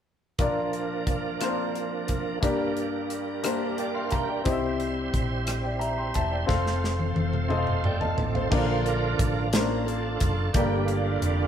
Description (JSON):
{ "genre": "slow gospel", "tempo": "59 BPM (dotted quarters)", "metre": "6/8", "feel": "straight", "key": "Bb major", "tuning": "A4 = 440 Hz", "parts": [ { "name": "clear grand piano", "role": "accompaniment", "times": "0.4-11.5 s", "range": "G2 to C6", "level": "-29 LUFS", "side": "left 3 dB", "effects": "none" }, { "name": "bright tonewheel organ", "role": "sustained chords", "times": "0.4-11.5 s", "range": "D3 to G5", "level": "-30 LUFS", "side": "right 5 dB", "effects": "fast rotary speaker, overdrive, chorus vibrato" }, { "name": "modern studio drum kit", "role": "drums", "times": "0.4-11.4 s", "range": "crash cymbal, hi-hat, kick drum, rim click, snare drum, toms", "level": "-28 LUFS", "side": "equal", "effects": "none" }, { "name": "hollow-body short-scale fingered electric bass", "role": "bass", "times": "4.5-11.5 s", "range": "E1 to C2", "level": "-29 LUFS", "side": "equal", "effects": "none" } ], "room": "moderate stone room reverb, RT60 1.3 s", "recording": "band playing live in one room", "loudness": "-24 LUFS", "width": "side -9 dB against mid", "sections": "0.4-8.5 A section; 8.5-11.5 B section", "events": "tonewheel organ fill 3.4-4.5; drum fill 6.5-8.5; tonewheel organ solo 8.5-11.5", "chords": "0.4 Bb; 2.4 Gm; 4.5 C; 6.5 F; 8.5 Bb; 10.5 Gm" }